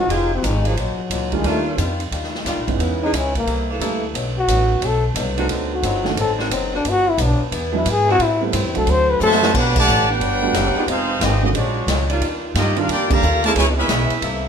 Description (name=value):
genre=jazz, big band swing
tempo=178 BPM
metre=4/4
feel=swing 64% on 8ths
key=unclear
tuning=A4 = 436 Hz
part: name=breathy trombone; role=melody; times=0.0-9.4 s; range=F3 to C5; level=-20 LUFS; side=left 3 dB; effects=none
part: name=warm grand piano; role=accompaniment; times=0.0-13.2 s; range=D3 to G4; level=-25 LUFS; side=right 6 dB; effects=none
part: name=upright bass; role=bass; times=0.0-14.5 s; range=F1 to A2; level=-22 LUFS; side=equal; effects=none
part: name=picked swing-style acoustic guitar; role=accompaniment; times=0.1-14.5 s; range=G2 to A4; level=-27 LUFS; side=left 5 dB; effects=none
part: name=dark saxophone section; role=sustained chords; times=0.1-13.9 s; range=C3 to A4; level=-26 LUFS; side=right 1 dB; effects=none
part: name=swinging big-band drum kit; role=drums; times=0.1-14.3 s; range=crash cymbal, hi-hat, kick drum, ride cymbal, snare drum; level=-25 LUFS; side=right 1 dB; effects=none
part: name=bright trumpet section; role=melody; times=9.2-14.5 s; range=Ab3 to Bb5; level=-20 LUFS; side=equal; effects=none
part: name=warm trombone section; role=second line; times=9.2-14.5 s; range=B2 to G4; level=-24 LUFS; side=right 3 dB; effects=none
room=moderate large studio reverb, RT60 1.1 s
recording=minimal, uncompressed stereo recording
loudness=-16 LUFS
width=side -7 dB against mid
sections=0.0-9.5 A section; 9.5-14.5 B section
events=trombone solo 0.0-9.5; drum fill 9.2-9.5; band accent 9.7, 13.1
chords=0.1 Fm9; 0.8 Bb7alt; 1.4 Ebmaj9; 2.8 C#m7; 3.5 C13; 4.1 Bm7; 5.5 D7b9; 6.8 Gmaj7; 7.5 E7; 8.2 Am7; 8.9 D9; 9.5 Gmaj7; 10.9 Fm9; 11.6 Bb7alt; 12.2 Ebmaj9; 13.6 C#m7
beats=| 0.10 0.43 0.77 1.11 | 1.45 1.78 2.12 2.46 | 2.80 3.13 3.47 3.81 | 4.15 4.49 4.82 5.16 | 5.50 5.83 6.17 6.51 | 6.85 7.18 7.52 7.86 | 8.19 8.53 8.87 9.20 | 9.54 9.88 10.21 10.55 | 10.88 11.22 11.55 11.89 | 12.22 12.56 12.89 13.22 | 13.56 13.89 14.22